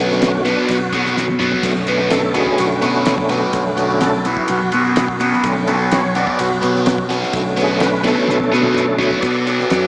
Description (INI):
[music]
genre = psychedelic rock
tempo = 126 BPM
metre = 4/4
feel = straight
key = B minor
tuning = A4 = 440 Hz
[part]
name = tonewheel organ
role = sustained chords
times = 0.0-9.9 s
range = D3 to D5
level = -20 LUFS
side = equal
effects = slow rotary speaker, chorus vibrato
[part]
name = fuzz guitar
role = riff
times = 0.0-9.9 s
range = B2 to B3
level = -16 LUFS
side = equal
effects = distortion, phaser, analog delay
[part]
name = fingered electric bass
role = bass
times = 0.0-9.9 s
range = B1 to B2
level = -24 LUFS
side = equal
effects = none
[part]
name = organ-like drone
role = drone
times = 0.5-9.3 s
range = B1 to F#2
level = -32 LUFS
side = equal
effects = none
[part]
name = maracas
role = percussion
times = 0.0-9.8 s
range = none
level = -39 LUFS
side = right 1 dB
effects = none
[part]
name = damped 70s drum kit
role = drums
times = 0.1-9.8 s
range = crash cymbal, kick drum, ride cymbal, snare drum, toms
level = -23 LUFS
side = equal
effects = analog delay
[sound]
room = light reverb, studio reverb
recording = echo-heavy mix, small speaker sound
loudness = -14 LUFS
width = side -27 dB against mid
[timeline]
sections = 0.0-9.2 A section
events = tonewheel organ solo 0.0-9.2; drum fill 1.2-1.6, 8.3-9.2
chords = 0.0 Bm7